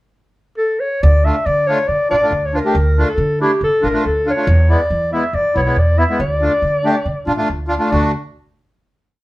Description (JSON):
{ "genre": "klezmer", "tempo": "139 BPM", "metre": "4/4", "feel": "straight", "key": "D harmonic minor", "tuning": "A4 = 440 Hz", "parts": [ { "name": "breathy clarinet", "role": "melody", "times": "0.6-8.1 s", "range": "G4 to E5", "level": "-17 LUFS", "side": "equal", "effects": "none" }, { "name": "upright bass", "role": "bass", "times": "1.0-8.1 s", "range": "A1 to E3", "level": "-16 LUFS", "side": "equal", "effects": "none" }, { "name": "accordion", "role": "accompaniment", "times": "1.2-8.1 s", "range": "G#3 to G4", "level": "-19 LUFS", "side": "equal", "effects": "none" } ], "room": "moderate studio reverb, RT60 0.6 s", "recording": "heard from further back in the room", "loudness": "-14 LUFS", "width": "side -18 dB against mid", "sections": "0.0-1.0 pickup bar; 1.0-7.9 A section; 7.9-9.2 final chord", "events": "none", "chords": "0.0 N.C.; 1.0 Dm; 4.5 E; 6.2 Dm; 7.9 D", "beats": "0.17 0.60 | 1.03 1.46 1.89 2.32 | 2.75 3.19 3.62 4.05 | 4.48 4.91 5.34 5.77 | 6.21 6.63 7.06 7.49 | 7.92" }